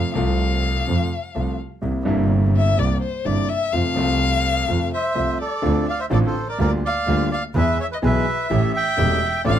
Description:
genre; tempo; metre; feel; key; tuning
tango; 126 BPM; 4/4; rubato; F major, D minor from 5.6 s; A4 = 440 Hz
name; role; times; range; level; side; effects
warm violin; second line; 0.0-9.6 s; C5 to G5; -25 LUFS; left 6 dB; none
clear concert grand piano; accompaniment; 0.0-9.6 s; E1 to G#4; -23 LUFS; left 1 dB; none
clear double bass; bass; 0.0-9.6 s; E1 to F2; -22 LUFS; right 2 dB; none
bandoneon; melody; 4.9-9.6 s; A4 to G5; -23 LUFS; right 4 dB; none
room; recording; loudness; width
light reverb; close, detailed microphones; -18 LUFS; side -10 dB against mid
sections
0.0-5.6 A section; 5.6-9.6 B section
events
violin solo 0.0-5.6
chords
0.0 F; 1.8 C7; 3.7 F; 5.6 Dm7; 6.6 Gm7/D; 7.6 E; 8.5 A7

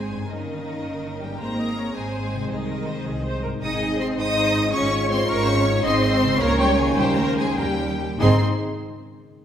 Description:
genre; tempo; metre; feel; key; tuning
classical, dramatic, fast romantic movement for symphony orchestra; 94-110 BPM (dotted quarters); 6/8; rubato; Ab major; A4 = 441 Hz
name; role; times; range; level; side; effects
rich chamber violin section; melody; 0.0-8.4 s; Eb5 to Eb6; -29 LUFS; left 2 dB; none
rich symphonic violin section; second line; 0.0-8.4 s; Eb4 to Eb5; -29 LUFS; left 4 dB; none
warm symphonic viola section; accompaniment; 0.0-8.4 s; Eb4 to Eb5; -28 LUFS; right 2 dB; none
clear French horn section; sustained chords; 0.0-8.4 s; Ab3 to F4; -28 LUFS; equal; none
concert harp; arpeggios; 0.0-8.4 s; G2 to Eb5; -32 LUFS; left 3 dB; none
dark symphonic double bass section; bass; 0.0-8.4 s; G1 to Eb2; -26 LUFS; right 2 dB; none
rich symphonic cello section; bass; 0.0-8.4 s; Eb3 to Eb4; -27 LUFS; right 2 dB; none
room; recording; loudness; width
wet scoring stage reverb, RT60 1.6 s; none; -20 LUFS; side -9 dB against mid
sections
0.0-8.2 A section; 8.2-9.4 B section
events
slowing down 5.3-8.2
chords
0.3 Eb7/G; 1.4 Ab; 2.5 Ab/C; 3.6 Ab; 4.7 Db/Ab; 5.8 Ab; 6.4 Bbm/Db; 7.0 Eb7; 8.2 Ab

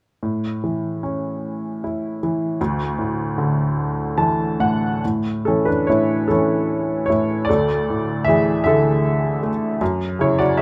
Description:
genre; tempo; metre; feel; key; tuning
classical, lyrical solo piano; 50 BPM (dotted quarters); 6/8; uneven beats, rubato; A major; A4 = 437 Hz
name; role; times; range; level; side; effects
bright upright piano; solo; 0.2-10.6 s; D2 to A5; -20 LUFS; equal; none
room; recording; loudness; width
light reverb; close, detailed microphones; -20 LUFS; mono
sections
0.2-5.0 A section; 5.0-10.6 B section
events
upright piano fill 3.8-5.0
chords
0.2 A; 2.6 Dsus2; 5.0 A; 7.5 Dsus2; 9.8 F#7(no3)

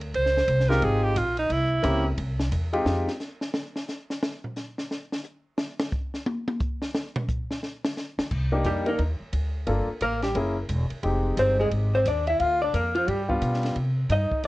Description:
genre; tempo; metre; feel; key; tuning
jazz, small-group swing and bop; 176 BPM; 4/4; swing 63% on 8ths; C minor; A4 = 440 Hz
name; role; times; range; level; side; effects
upright bass; bass; 0.0-3.1, 8.2-14.5 s; E1 to C3; -26 LUFS; equal; none
compact cocktail drum kit; drums; 0.0-14.5 s; crash cymbal, hi-hat, kick drum, ride cymbal, snare drum, toms; -32 LUFS; equal; vintage 12-bit sampler grit
clear alto saxophone; second line; 0.2-2.1, 8.7-14.4 s; Eb3 to C5; -27 LUFS; right 2 dB; none
clear grand piano; accompaniment; 0.7-3.1, 8.5-13.7 s; G3 to Bb4; -27 LUFS; left 1 dB; none
vintage hollow-body jazz guitar; melody; 8.7-14.4 s; Eb4 to F5; -25 LUFS; left 1 dB; none
room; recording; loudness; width
moderate studio reverb, RT60 0.6 s; worn, warbling old tape, cassette tape, warbly pitch drift; -24 LUFS; side -18 dB against mid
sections
0.0-8.3 A section; 8.3-14.5 B section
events
alto saxophone solo 0.0-8.3; drum solo 2.9-8.3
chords
0.1 Dbmaj9#11; 1.5 C7b9; 2.9 Fm9; 4.2 N.C.; 8.3 Cm9; 9.7 Gm9; 10.4 F#9; 11.0 Fm9; 12.4 Bb/D; 13.1 G7; 13.8 Cm

